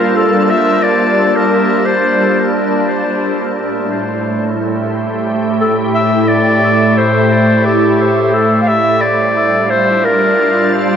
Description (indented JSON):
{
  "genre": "ambient",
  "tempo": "88 BPM",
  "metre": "4/4",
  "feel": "swing 54% on 16ths",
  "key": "G dorian",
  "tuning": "A4 = 440 Hz",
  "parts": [
    { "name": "clear clarinet", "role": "melody", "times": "0.0-10.8 s", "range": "G4 to F5", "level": "-14 LUFS", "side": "equal", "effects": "dub echo" },
    { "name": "soft additive organ-like pad", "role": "sustained chords", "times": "0.0-11.0 s", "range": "A2 to A5", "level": "-13 LUFS", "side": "equal", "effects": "ensemble chorus, built-in reverb" }
  ],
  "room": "wet spring reverb, RT60 2.9 s",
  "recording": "none",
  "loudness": "-10 LUFS",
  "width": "side -8 dB against mid",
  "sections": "0.0-11.0 A section",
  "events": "none",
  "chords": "0.0 Gm11; 3.6 Am7; 9.0 Gm11"
}